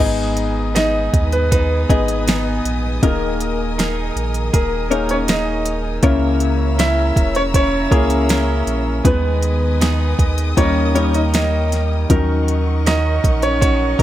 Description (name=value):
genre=pop ballad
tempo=80 BPM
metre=4/4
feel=straight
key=G# minor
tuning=A4 = 441 Hz
part: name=felt-muted upright piano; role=accompaniment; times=0.0-14.0 s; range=G#2 to D#5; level=-22 LUFS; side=left 5 dB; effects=none
part: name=warm studio string section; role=sustained chords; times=0.0-14.0 s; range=A#4 to E6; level=-29 LUFS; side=left 2 dB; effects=none
part: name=direct-recorded clean electric guitar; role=arpeggios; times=0.0-14.0 s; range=G#2 to A#4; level=-28 LUFS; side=right 9 dB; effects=none
part: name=warm sub bass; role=bass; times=0.0-14.0 s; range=D#1 to D#2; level=-20 LUFS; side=right 1 dB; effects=none
part: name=smooth R&B drum kit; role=drums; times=0.4-14.0 s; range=hi-hat, kick drum, snare drum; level=-18 LUFS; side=right 1 dB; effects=none
part: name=clear grand piano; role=melody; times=0.8-14.0 s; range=A#3 to E5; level=-21 LUFS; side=right 1 dB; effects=none
part: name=mellow French horn section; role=second line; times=12.1-14.0 s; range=D#4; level=-28 LUFS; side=right 3 dB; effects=none
room=small room ambience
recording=none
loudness=-15 LUFS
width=side -13 dB against mid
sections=0.0-14.0 A section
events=none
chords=0.0 G#m; 3.0 D#sus4; 6.0 A#dim; 9.0 G#m/D#; 10.6 D#; 12.1 D#m7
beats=0.75 1.52 2.27 | 3.03 3.78 4.53 5.28 | 6.03 6.78 7.54 8.29 | 9.04 9.80 10.56 11.33 | 12.10 12.86 13.61